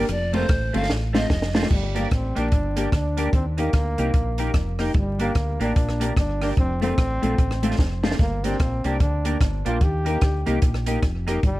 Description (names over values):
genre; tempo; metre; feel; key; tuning
ska; 148 BPM; 4/4; swing 61% on 8ths; G minor; A4 = 440 Hz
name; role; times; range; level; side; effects
breathy bright polished pan flute; melody; 0.0-1.7 s; C5 to F5; -28 LUFS; right 1 dB; none
clean electric guitar; accompaniment; 0.0-11.4 s; A3 to G4; -30 LUFS; right 3 dB; analog chorus
dark upright piano; stabs; 0.0-11.4 s; A3 to Bb4; -30 LUFS; left 4 dB; tape echo
fingered electric bass; bass; 0.0-11.6 s; F1 to Eb2; -25 LUFS; equal; none
compact cocktail drum kit; drums; 0.1-11.5 s; crash cymbal, hi-hat, kick drum, ride cymbal, rim click, snare drum; -22 LUFS; equal; none
clear trombone; melody; 1.7-11.6 s; G3 to G4; -29 LUFS; equal; tape echo
room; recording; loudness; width
little or no reverb; vinyl crackle; -20 LUFS; side -17 dB against mid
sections
0.0-1.7 A section; 1.7-11.6 B section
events
pan flute solo 0.0-1.7; drum fill 0.9-1.7, 7.8-8.2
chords
0.1 F; 1.7 Gm; 3.3 Eb; 5.0 Gm; 6.6 F; 8.2 Gm; 9.8 Eb